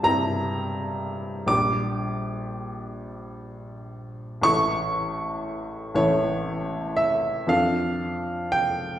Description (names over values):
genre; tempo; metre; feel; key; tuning
classical, romantic nocturne for solo piano; 36-42 BPM (dotted quarters); 6/8; rubato; unclear; A4 = 440 Hz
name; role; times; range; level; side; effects
warm upright piano; solo; 0.0-9.0 s; A1 to D6; -23 LUFS; equal; none
room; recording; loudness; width
wet recital hall reverb, RT60 1.4 s; heard from further back in the room; -23 LUFS; side -11 dB against mid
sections
0.0-9.0 A section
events
none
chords
0.0 C7/G; 1.5 Gm/Bb; 4.5 A; 7.5 Dm/F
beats
0.07 | 1.50 2.97 | 4.45 5.97 | 7.52